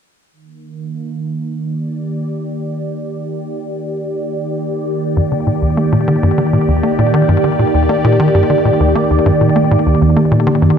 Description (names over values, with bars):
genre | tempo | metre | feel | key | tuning
ambient, sequencer-driven space music | 99 BPM | 4/4 | straight | unclear | A4 = 439 Hz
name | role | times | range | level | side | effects
phased analog pad | sustained chords | 0.7-10.8 s | Eb3 to D5 | -15 LUFS | right 1 dB | phaser, chorus
tight sequencer bass | riff | 5.2-10.7 s | Eb2 to Bb3 | -14 LUFS | left 1 dB | analog chorus, cassette tape, ping-pong delay
room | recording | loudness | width
wet plate reverb, RT60 3.5 s | cassette tape | -12 LUFS | side -7 dB against mid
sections
0.3-10.0 A section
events
none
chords
0.3 Ebmaj7